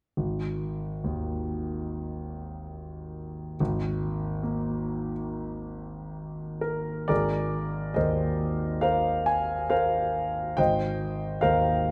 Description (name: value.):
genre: classical, impressionist solo piano.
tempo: 70 BPM.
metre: 4/4.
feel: rubato.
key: Ab lydian.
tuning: A4 = 439 Hz.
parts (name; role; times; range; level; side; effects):
warm concert grand piano; solo; 0.2-11.9 s; Ab1 to Ab5; -29 LUFS; equal; none.
room: wet concert hall reverb, RT60 2.0 s.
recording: none.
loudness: -28 LUFS.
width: mono.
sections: 0.2-7.1 A section; 7.1-11.9 B section.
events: none.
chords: 0.2 Absus2; 7.1 Ab69; 10.6 Fm11/Ab.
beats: | 0.17 1.04 1.90 2.75 | 3.60 4.43 5.28 6.16 | 7.10 7.97 8.84 9.72 | 10.58 11.43.